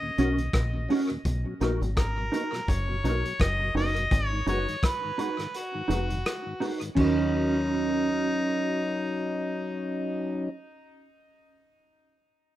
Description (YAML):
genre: roots reggae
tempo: 84 BPM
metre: 4/4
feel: swing 57% on 16ths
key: Eb minor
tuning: A4 = 440 Hz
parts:
  - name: mellow harmonica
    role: melody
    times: 0.0-10.5 s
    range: Eb4 to D#5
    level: -32 LUFS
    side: equal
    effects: tape echo
  - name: mellow tonewheel organ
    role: accompaniment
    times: 0.0-10.5 s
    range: Eb2 to Gb4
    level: -32 LUFS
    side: left 2 dB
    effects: slow rotary speaker
  - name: mellow electric guitar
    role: accompaniment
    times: 0.2-10.6 s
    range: Db4 to Cb5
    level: -29 LUFS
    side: right 2 dB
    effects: ensemble chorus, tape echo
  - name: deep dub fingered electric bass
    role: bass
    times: 0.2-10.5 s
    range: F1 to Eb2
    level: -29 LUFS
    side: equal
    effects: none
  - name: crunchy breakbeat drum kit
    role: drums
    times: 0.2-7.2 s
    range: crash cymbal, hi-hat, kick drum, rim click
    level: -30 LUFS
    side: equal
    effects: tape echo
room: moderate studio reverb, RT60 0.5 s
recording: rough home demo mix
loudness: -25 LUFS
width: side -14 dB against mid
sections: 0.0-7.0 A section; 7.0-9.8 B section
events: break 5.5-7.0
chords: 0.0 Ebm7; 1.3 Bmaj7; 4.1 Abm7; 7.0 Ebm7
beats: 0.54 | 1.25 1.97 2.68 3.40 | 4.11 4.83 5.54 6.25 | 6.97 7.68 8.40 9.11